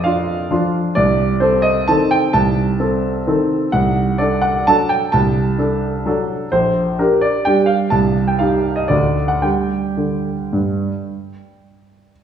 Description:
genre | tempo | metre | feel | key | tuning
classical, piano waltz | 108-139 BPM | 3/4 | rubato | G minor | A4 = 440 Hz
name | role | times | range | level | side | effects
clear grand piano | solo | 0.0-12.1 s | Bb1 to A5 | -14 LUFS | right 1 dB | none
room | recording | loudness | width
wet recital hall reverb, RT60 1.7 s | heard from further back in the room, studio ambience | -14 LUFS | side -8 dB against mid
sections
0.0-12.2 A section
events
none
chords
0.0 Bb (rootless); 1.0 Adim/C; 3.7 D7/C; 6.5 Gm/Bb; 7.9 Cm; 8.9 D; 9.4 G5

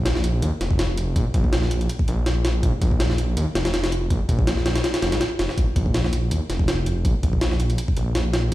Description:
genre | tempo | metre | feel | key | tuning
drum and bass, jungle | 163 BPM | 4/4 | swing 54% on 16ths | unclear | A4 = 440 Hz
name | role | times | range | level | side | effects
detuned saw bass | bass | 0.0-8.5 s | F1 to Eb2 | -22 LUFS | equal | tube saturation
jungle sampler-style drum kit | drums | 0.1-8.5 s | hi-hat, kick drum, snare drum | -22 LUFS | equal | overdrive, studio reverb
room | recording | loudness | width
little or no reverb | played on a big sound system in a bare room, large studio reverb | -19 LUFS | side -16 dB against mid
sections
0.0-8.5 A section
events
none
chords
none

